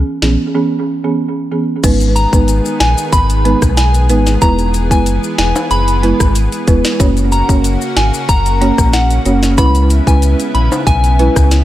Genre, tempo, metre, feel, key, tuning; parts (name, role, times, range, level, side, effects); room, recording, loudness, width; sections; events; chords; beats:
dancehall; 93 BPM; 4/4; straight; G# minor; A4 = 439 Hz
folk marimba with medium mallets; accompaniment; 0.0-11.4 s; E3 to C#5; -16 LUFS; right 3 dB; analog delay
sub bass with octave; bass; 0.0-11.6 s; E1 to C#2; -13 LUFS; equal
island pop drum kit; drums; 0.2-11.6 s; crash cymbal, hi-hat, kick drum, rim click, snare drum; -15 LUFS; equal
lush unison pad; sustained chords; 1.8-11.6 s; C#3 to G#4; -21 LUFS; equal; chorus, sidechain pumping
maracas and timbales; percussion; 1.8-11.6 s; -24 LUFS; left 5 dB
soft synth bell; melody; 2.2-11.3 s; F#5 to B5; -18 LUFS; left 1 dB; chorus, analog delay
light reverb; echo-heavy mix; -10 LUFS; side -14 dB against mid
0.0-1.8 A section; 1.8-11.6 B section
break 0.5-1.8
0.0 C#m7; 1.8 G#m; 4.4 E; 7.0 F#; 9.6 C#m7
0.55 1.19 | 1.84 2.48 3.13 3.77 | 4.42 5.06 5.71 6.35 | 7.00 7.64 8.29 8.93 | 9.58 10.22 10.87 11.51